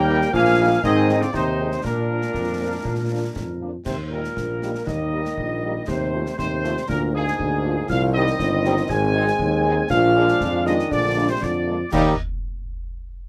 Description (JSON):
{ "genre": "military-style march for wind band", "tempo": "119 BPM", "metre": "2/4", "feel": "straight", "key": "Eb major", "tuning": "A4 = 440 Hz", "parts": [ { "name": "mellow trumpet section", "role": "melody", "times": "0.0-12.1 s", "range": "Ab4 to Ab5", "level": "-29 LUFS", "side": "equal", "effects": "none" }, { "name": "mellow euphonium", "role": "second line", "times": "0.0-12.1 s", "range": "Ab2 to Ab3", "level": "-28 LUFS", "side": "equal", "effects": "none" }, { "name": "mellow woodwind section", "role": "second line", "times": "0.0-12.1 s", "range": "G4 to Ab5", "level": "-32 LUFS", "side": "equal", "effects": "none" }, { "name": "small flute group", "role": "second line", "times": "0.0-12.2 s", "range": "D4 to Ab5", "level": "-36 LUFS", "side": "equal", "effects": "none" }, { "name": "warm trombone section", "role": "sustained chords", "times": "0.0-12.1 s", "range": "F3 to Eb4", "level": "-33 LUFS", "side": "equal", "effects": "none" }, { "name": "mellow tuba", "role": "bass", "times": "0.0-12.1 s", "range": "G1 to Bb2", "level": "-25 LUFS", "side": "equal", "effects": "none" }, { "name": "mellow French horn section", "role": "accompaniment", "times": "0.1-12.1 s", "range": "F3 to F4", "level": "-29 LUFS", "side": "equal", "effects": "none" }, { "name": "concert snare drum, concert bass drum and clash cymbals", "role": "drums", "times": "0.2-12.2 s", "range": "none", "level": "-35 LUFS", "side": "equal", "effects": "none" } ], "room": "moderate booth ambience, RT60 0.2 s", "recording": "close, detailed microphones", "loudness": "-21 LUFS", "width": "mono", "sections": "0.0-3.9 A section; 3.9-11.9 B section; 11.9-12.9 C section", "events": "none", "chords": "0.0 Eb; 0.8 Ab; 1.8 Bb; 3.9 Eb; 5.9 F7/Eb; 6.9 Bb/D; 7.9 Cm; 8.9 Ab; 9.9 Bb7; 11.9 Eb", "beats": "0.34 | 0.84 1.34 | 1.85 2.35 | 2.85 3.36 | 3.86 4.37 | 4.87 5.37 | 5.88 6.38 | 6.89 7.39 | 7.89 8.40 | 8.90 9.40 | 9.91 10.41 | 10.92 11.42 | 11.93" }